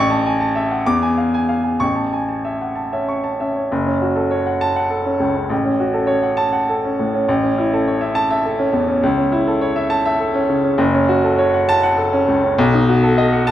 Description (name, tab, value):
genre	classical, virtuoso piano study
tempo	67 BPM (dotted quarters)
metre	6/8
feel	rubato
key	A major, F# minor from 3.7 s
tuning	A4 = 440 Hz
part	clear baby grand piano	solo	0.0-13.5 s	F#1 to D6	-15 LUFS	equal	none
room	wet recital hall reverb, RT60 1.7 s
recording	dark, warm production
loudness	-15 LUFS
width	side -12 dB against mid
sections	0.0-3.7 A section; 3.7-13.5 B section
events	none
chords	0.0 A; 0.8 E7b9; 1.8 A; 3.7 F#m; 5.5 F#m/A; 7.3 A; 9.0 A/C#; 10.8 F#m; 12.6 B7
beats	0.85 | 1.80 2.77 | 3.71 4.61 | 5.51 6.39 | 7.28 8.16 | 9.03 9.92 | 10.80 11.69 | 12.58 13.48